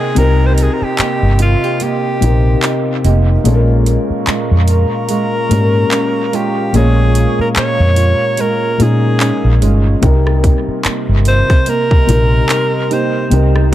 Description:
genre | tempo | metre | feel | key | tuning
contemporary R&B | 73 BPM | 4/4 | swing 58% on 16ths | C phrygian | A4 = 440 Hz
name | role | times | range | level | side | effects
clear alto saxophone | melody | 0.0-13.3 s | F4 to Db5 | -18 LUFS | equal | dub echo
felt-muted upright piano | accompaniment | 0.0-13.7 s | Bb2 to Db5 | -18 LUFS | left 5 dB | dub echo
deep dark ambient pad | sustained chords | 0.0-13.7 s | Bb4 to Db6 | -24 LUFS | right 3 dB | chorus, built-in reverb
nylon-string guitar | arpeggios | 0.0-13.7 s | Bb2 to G4 | -21 LUFS | right 7 dB | dub echo
downlifter | sound effects | 0.0-3.5 s | none | -34 LUFS | right 2 dB | none
vintage muted fingered electric bass | bass | 0.2-13.7 s | F1 to Bb2 | -12 LUFS | equal | none
trap drum kit | drums | 0.2-13.7 s | handclaps, hi-hat, kick drum, rim click | -17 LUFS | equal | dub echo
room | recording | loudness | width
small room ambience | echo-heavy mix | -11 LUFS | side -13 dB against mid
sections
0.0-13.7 A section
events
break 0.0-10.0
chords
0.0 Cm7; 3.5 Bbm7; 10.0 Cm7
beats
| 0.17 0.99 1.81 2.63 | 3.45 4.27 5.10 5.92 | 6.74 7.56 8.38 9.21 | 10.03 10.85 11.67 12.49 | 13.31

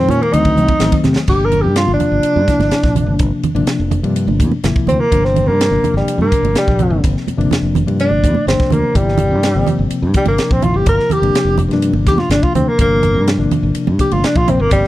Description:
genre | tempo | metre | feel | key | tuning
electric jazz fusion | 125 BPM | 4/4 | straight | G dorian | A4 = 440 Hz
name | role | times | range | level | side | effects
mellow tenor saxophone | melody | 0.0-14.9 s | G3 to Bb4 | -16 LUFS | equal | tape echo
reed electric piano | accompaniment | 0.0-14.9 s | Bb2 to F4 | -19 LUFS | left 3 dB | fast tremolo
fingered electric bass | bass | 0.0-14.8 s | F1 to C3 | -17 LUFS | equal | none
crisp fusion drum kit | drums | 0.1-14.9 s | crash cymbal, hi-hat, kick drum, ride cymbal, snare drum | -18 LUFS | equal | none
congas | percussion | 0.1-14.6 s | none | -21 LUFS | right 5 dB | none
room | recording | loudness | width
small room ambience | dry, close 1970s-style studio recording | -12 LUFS | side -15 dB against mid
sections
0.0-1.3 A section; 1.3-14.9 B section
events
drum fill 1.0; tenor saxophone solo 1.3-14.9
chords
0.3 D7b9; 1.3 Gm7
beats
0.33 0.81 | 1.28 1.76 2.24 2.72 | 3.20 3.68 4.16 4.64 | 5.12 5.60 6.08 6.56 | 7.04 7.51 8.00 8.47 | 8.95 9.43 9.91 10.39 | 10.87 11.35 11.83 12.31 | 12.79 13.27 13.76 14.23 | 14.71

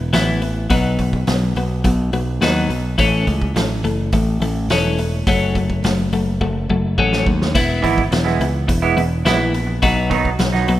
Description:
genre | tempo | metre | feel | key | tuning
indie rock | 105 BPM | 4/4 | straight | E major | A4 = 440 Hz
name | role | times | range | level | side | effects
twelve-string electric guitar | riff | 0.0-10.8 s | E3 to E4 | -19 LUFS | left 3 dB | spring reverb
modern bright picked electric bass | bass | 0.0-10.8 s | E1 to D#2 | -20 LUFS | right 1 dB | none
loose indie drum kit | drums | 0.1-10.8 s | crash cymbal, hi-hat, kick drum, snare drum | -22 LUFS | right 1 dB | none
raw garage guitar | riff | 7.8-10.7 s | D#3 to E4 | -20 LUFS | right 6 dB | overdrive, wide subtle chorus
room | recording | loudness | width
studio reverb | rough home demo mix | -15 LUFS | side -14 dB against mid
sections
0.0-10.8 A section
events
drum fill 6.4-7.5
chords
0.0 E5; 0.7 B; 3.0 A; 5.3 F#m; 7.5 E; 9.8 B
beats
0.13 | 0.70 1.27 1.84 2.42 | 2.99 3.56 4.13 4.70 | 5.27 5.84 6.41 6.98 | 7.55 8.12 8.69 9.26 | 9.82 10.39

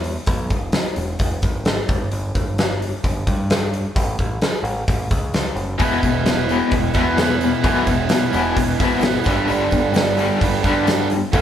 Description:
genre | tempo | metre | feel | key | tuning
classic rock | 130 BPM | 4/4 | straight | unclear | A4 = 440 Hz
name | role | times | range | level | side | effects
growling picked electric bass | bass | 0.0-11.4 s | E1 to G2 | -25 LUFS | equal | overdrive
big rock drum kit | drums | 0.0-11.4 s | hi-hat, kick drum, snare drum | -20 LUFS | equal | none
cranked stack guitar | riff | 5.8-11.4 s | E2 to A3 | -20 LUFS | left 5 dB | overdrive, tremolo
cranked stack guitar | riff | 5.8-11.4 s | G2 to E4 | -20 LUFS | right 5 dB | overdrive
tambourine | percussion | 5.8-11.4 s | none | -43 LUFS | right 5 dB | none
room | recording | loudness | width
moderate stone room reverb, RT60 1.1 s | band playing live in one room | -17 LUFS | side -10 dB against mid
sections
0.0-11.4 A section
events
none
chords
0.0 E; 1.9 N.C.; 4.0 A; 5.8 E; 9.3 G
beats
| 0.27 0.73 1.19 1.65 | 2.12 2.58 3.04 3.50 | 3.96 4.42 4.88 5.34 | 5.80 6.26 6.72 7.18 | 7.64 8.10 8.56 9.03 | 9.49 9.95 10.41 10.87 | 11.33

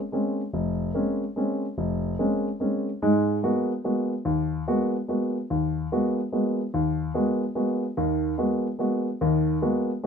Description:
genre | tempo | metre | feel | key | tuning
jazz | 145 BPM | 3/4 | swing 64% on 8ths | Bb minor, G# minor from 3.0 s | A4 = 440 Hz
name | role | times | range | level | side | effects
dark grand piano | solo | 0.1-10.1 s | F1 to F#4 | -23 LUFS | equal | none
room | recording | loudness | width
light reverb | minimal, uncompressed stereo recording | -23 LUFS | side -6 dB against mid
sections
0.0-3.0 A section; 3.0-10.1 B section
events
none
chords
0.0 Bbm9; 3.0 G#m9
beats
0.12 | 0.54 0.95 1.36 | 1.77 2.19 2.60 | 3.01 3.43 3.84 | 4.25 4.67 5.08 | 5.49 5.91 6.32 | 6.73 7.14 7.56 | 7.97 8.38 8.79 | 9.21 9.62 10.03

